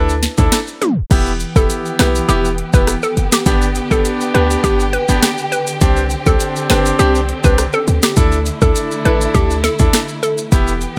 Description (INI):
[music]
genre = dancehall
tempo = 102 BPM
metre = 4/4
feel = straight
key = unclear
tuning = A4 = 440 Hz
[part]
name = hollow square pluck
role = melody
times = 0.0-10.4 s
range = G4 to B4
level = -22 LUFS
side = equal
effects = chorus, tape echo
[part]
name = bright grand piano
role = accompaniment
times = 0.0-10.7 s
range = B3 to A4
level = -22 LUFS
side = equal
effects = none
[part]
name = short 808-style bass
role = bass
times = 0.0-10.9 s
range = E1 to D2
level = -19 LUFS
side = equal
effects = none
[part]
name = maracas and timbales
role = percussion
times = 0.1-11.0 s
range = none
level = -27 LUFS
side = equal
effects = none
[part]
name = afro-pop drum kit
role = drums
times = 0.2-11.0 s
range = crash cymbal, hi-hat, kick drum, rim click, snare drum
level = -18 LUFS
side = equal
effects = none
[part]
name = warm studio string section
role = sustained chords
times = 1.1-11.0 s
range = D3 to G4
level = -26 LUFS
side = equal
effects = sidechain pumping
[sound]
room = light reverb, small room reverb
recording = tape stop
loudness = -15 LUFS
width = mono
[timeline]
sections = 0.0-1.1 A section; 1.1-11.0 B section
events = tape stop 0.8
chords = 0.0 Dsus2; 1.1 Em; 3.5 G; 5.8 Csus2; 8.2 Dsus2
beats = 0.52 | 1.11 1.70 2.29 2.88 | 3.46 4.05 4.64 5.23 | 5.82 6.40 6.99 7.58 | 8.17 8.76 9.35 9.93 | 10.52